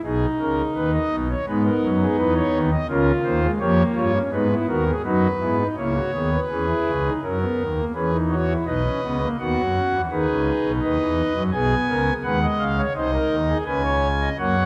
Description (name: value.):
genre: classical, baroque-style 4-part fugue for pipe organ.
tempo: 84 BPM.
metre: 4/4.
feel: straight.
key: G# minor.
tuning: A4 = 441 Hz.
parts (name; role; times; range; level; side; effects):
pipe organ, foundations; solo; 0.0-14.7 s; B1 to G#5; -22 LUFS; equal; none.
room: wet concert hall reverb, RT60 2.1 s.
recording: dark, warm production.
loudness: -22 LUFS.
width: mono.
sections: 0.0-5.8 A section; 5.8-14.7 B section.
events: none.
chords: 0.0 G#m/B; 1.5 G#m; 2.9 Gdim/Db; 4.3 G#m; 5.8 C#m; 7.2 F#7; 8.7 B; 10.1 Emaj7; 11.5 G#m7/B; 12.9 G#/B#; 13.7 C#5.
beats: | 0.03 0.76 1.48 2.19 | 2.90 3.62 4.33 5.05 | 5.78 6.50 7.23 7.95 | 8.66 9.38 10.10 10.82 | 11.53 12.24 12.95 13.67 | 14.40.